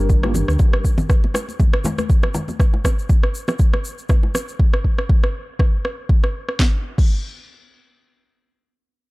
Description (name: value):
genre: afro house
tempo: 120 BPM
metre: 4/4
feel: swing 55% on 16ths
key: G minor pentatonic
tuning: A4 = 443 Hz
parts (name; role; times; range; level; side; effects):
- warm analog pad; sustained chords; 0.0-2.6 s; G3 to Bb4; -28 LUFS; left 2 dB; chorus, vintage 12-bit sampler grit, sidechain pumping
- dark detuned saw bass; bass; 0.0-0.6 s; G1 to D2; -20 LUFS; equal; sidechain pumping
- electronic kick drum; drums; 0.1-7.1 s; none; -16 LUFS; equal; overdrive, studio reverb
- congas; percussion; 0.1-2.6 s; none; -27 LUFS; left 2 dB; none
- egg shaker; percussion; 0.1-4.6 s; none; -35 LUFS; left 3 dB; none
- afro-pop drum kit; drums; 0.2-7.1 s; crash cymbal, rim click, snare drum; -26 LUFS; equal; studio reverb
- bongos; percussion; 0.2-4.5 s; none; -27 LUFS; right 1 dB; none
room: little or no reverb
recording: dark, warm production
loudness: -16 LUFS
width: side -22 dB against mid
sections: 0.0-6.6 A section; 6.6-9.1 B section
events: filter sweep on analog synth pad 0.0-2.6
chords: 0.0 Gm; 6.6 N.C.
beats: 0.10 | 0.59 1.09 1.59 2.10 | 2.60 3.10 3.60 4.09 | 4.59 5.09 5.59 6.09 | 6.59 7.09